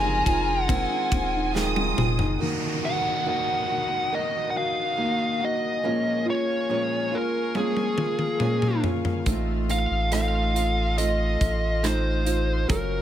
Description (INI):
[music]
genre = pop ballad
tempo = 70 BPM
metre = 4/4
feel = straight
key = unclear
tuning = A4 = 440 Hz
[part]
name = fuzz lead guitar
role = melody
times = 0.0-13.0 s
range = Ab4 to Ab5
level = -26 LUFS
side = equal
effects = distortion
[part]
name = rich studio violin section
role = second line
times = 0.0-2.4 s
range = Ab5 to Eb6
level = -31 LUFS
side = right 1 dB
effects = none
[part]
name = dark concert grand piano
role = accompaniment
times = 0.0-13.0 s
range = Eb3 to Bb4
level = -30 LUFS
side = left 6 dB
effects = none
[part]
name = warm studio string section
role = sustained chords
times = 0.0-13.0 s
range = F4 to Eb6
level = -36 LUFS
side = left 1 dB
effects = none
[part]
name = nylon-string guitar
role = arpeggios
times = 0.0-13.0 s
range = F2 to Bb4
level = -31 LUFS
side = right 6 dB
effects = none
[part]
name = warm sub bass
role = bass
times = 0.0-2.4, 9.3-13.0 s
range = Eb1 to A1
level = -26 LUFS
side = equal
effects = none
[part]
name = modern studio drum kit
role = drums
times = 0.3-2.4, 7.5-12.9 s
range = hi-hat, kick drum, ride cymbal, rim click, snare drum, toms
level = -27 LUFS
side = equal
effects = none
[part]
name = downlifter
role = sound effects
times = 2.4-9.3 s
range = none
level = -34 LUFS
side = right 1 dB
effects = none
[sound]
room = light reverb, small room ambience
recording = faint mains hum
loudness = -22 LUFS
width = side -11 dB against mid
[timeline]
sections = 0.0-2.4 A section; 2.4-13.0 B section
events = drum fill 1.6-2.4, 7.6-9.3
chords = 0.0 Fm7; 2.4 Ebm; 5.8 Bbm7; 9.3 F7/A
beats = 0.70 1.55 | 2.41 3.27 4.12 4.98 | 5.84 6.70 7.55 8.41 | 9.27 10.12 10.98 11.84 | 12.70